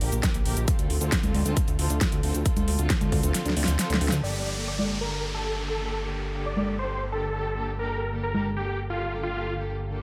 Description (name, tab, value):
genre	uplifting trance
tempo	135 BPM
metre	4/4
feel	straight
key	G minor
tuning	A4 = 439 Hz
part	dark studio string section	sustained chords	0.0-10.0 s	D3 to Bb4	-36 LUFS	equal	sidechain pumping
part	fat analog bass	bass	0.0-10.0 s	G1 to D2	-31 LUFS	equal	sidechain pumping
part	big-room dance drum kit	drums	0.0-8.4 s	congas, crash cymbal, hi-hat, shaker, snare drum	-31 LUFS	equal	overdrive, low-pass filter on hats, small room ambience, low-pass filter on perc, low-pass filter on snare, low-pass filter on cymbals
part	electronic kick drum	drums	0.2-3.2 s	none	-28 LUFS	equal	overdrive, small room ambience
part	big supersaw lead	melody	4.2-9.5 s	F4 to D5	-34 LUFS	equal	sidechain pumping, low-pass filter, tape echo
part	downlifter	sound effects	4.2-7.8 s	none	-38 LUFS	equal	none
room	light reverb, digital ambience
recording	none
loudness	-27 LUFS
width	mono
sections	0.0-4.2 A section; 4.2-10.0 B section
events	kick drops out 3.3-4.2; drum fill 3.3-4.2; band accent 4.1; filter sweep on supersaw synth 4.2-10.0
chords	0.0 Bb; 0.7 Dm7; 4.2 Gmadd9